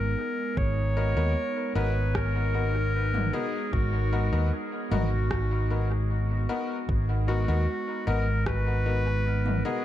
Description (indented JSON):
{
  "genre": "ambient dub",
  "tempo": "76 BPM",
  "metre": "4/4",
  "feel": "straight",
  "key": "G# minor",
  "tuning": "A4 = 439 Hz",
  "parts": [
    { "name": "clear clarinet", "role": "melody", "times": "0.0-9.8 s", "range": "F#4 to C#5", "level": "-32 LUFS", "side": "equal", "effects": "vintage 12-bit sampler grit, dub echo" },
    { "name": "warbly tape-like pad", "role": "sustained chords", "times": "0.0-9.8 s", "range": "G#3 to A#5", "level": "-36 LUFS", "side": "right 2 dB", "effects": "chorus, built-in reverb" },
    { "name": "fingered electric bass", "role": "bass", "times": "0.0-9.6 s", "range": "G#1 to D#2", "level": "-26 LUFS", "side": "equal", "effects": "none" },
    { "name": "electronic kick drum", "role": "drums", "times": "0.6-8.6 s", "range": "none", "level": "-31 LUFS", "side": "equal", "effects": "none" },
    { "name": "bright upright piano", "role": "stabs", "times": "1.0-9.8 s", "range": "B3 to A#4", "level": "-34 LUFS", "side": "left 4 dB", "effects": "dub echo" },
    { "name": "organic electronic drum kit", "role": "drums", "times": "2.1-9.6 s", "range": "rim click, toms", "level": "-35 LUFS", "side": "left 1 dB", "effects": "dub echo" }
  ],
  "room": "light reverb, digital ambience",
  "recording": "none",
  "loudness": "-24 LUFS",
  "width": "side -12 dB against mid",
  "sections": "0.0-9.8 A section",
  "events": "none",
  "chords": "0.0 G#m7",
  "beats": "| 0.57 1.36 2.15 2.94 | 3.73 4.52 5.31 6.10 | 6.89 7.68 8.47 9.26"
}